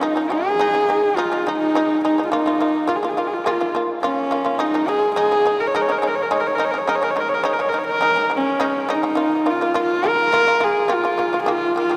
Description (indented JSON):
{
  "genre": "mongolian traditional, Mongolian folk",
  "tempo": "105 BPM",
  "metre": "4/4",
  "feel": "straight",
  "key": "Bb yu mode",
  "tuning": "A4 = 440 Hz",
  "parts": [
    { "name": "rich horsehead fiddle", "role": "melody", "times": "0.0-12.0 s", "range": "Db4 to Db5", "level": "-21 LUFS", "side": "equal", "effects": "none" },
    { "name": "shamisen", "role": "arpeggios", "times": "0.0-12.0 s", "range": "Eb3 to F4", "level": "-25 LUFS", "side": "equal", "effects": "none" }
  ],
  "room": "wet cathedral reverb, RT60 5.5 s",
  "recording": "in a vast, echoing space",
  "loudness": "-19 LUFS",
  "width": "mono",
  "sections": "0.0-9.2 A section; 9.2-12.0 B section",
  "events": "none",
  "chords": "0.0 Ab5; 2.3 Bb5; 4.6 Ab5; 9.2 Bb5"
}